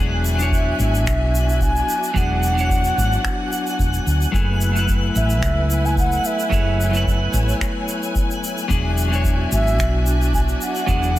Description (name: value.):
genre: sunset chillout.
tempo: 110 BPM.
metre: 4/4.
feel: straight.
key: unclear.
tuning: A4 = 440 Hz.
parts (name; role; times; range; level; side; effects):
clean electric guitar; accompaniment; 0.0-11.2 s; F#3 to C#5; -25 LUFS; moving between left 5 dB and right 7 dB; auto-pan, tape echo.
warm studio string section; sustained chords; 0.0-11.2 s; A3 to G#5; -27 LUFS; equal; none.
woody fretless electric bass; bass; 0.0-11.2 s; E1 to D2; -20 LUFS; equal; lush chorus.
twinkling granular texture; texture; 0.0-11.2 s; F#6; -31 LUFS; right 2 dB; built-in reverb.
shaker and finger snaps; drums; 0.3-11.2 s; none; -30 LUFS; equal; none.
mellow baroque flute; melody; 0.5-11.2 s; E5 to G#5; -25 LUFS; equal; tape echo.
electronic kick drum; drums; 0.5-11.0 s; none; -22 LUFS; equal; none.
room: studio reverb.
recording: none.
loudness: -17 LUFS.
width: side -15 dB against mid.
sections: 0.0-11.2 A section.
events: none.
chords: 0.0 E9; 4.3 F#m11; 8.7 E9.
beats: 0.52 1.06 1.61 | 2.15 2.70 3.25 3.79 | 4.34 4.88 5.43 5.97 | 6.52 7.06 7.61 8.15 | 8.70 9.24 9.79 10.34 | 10.88.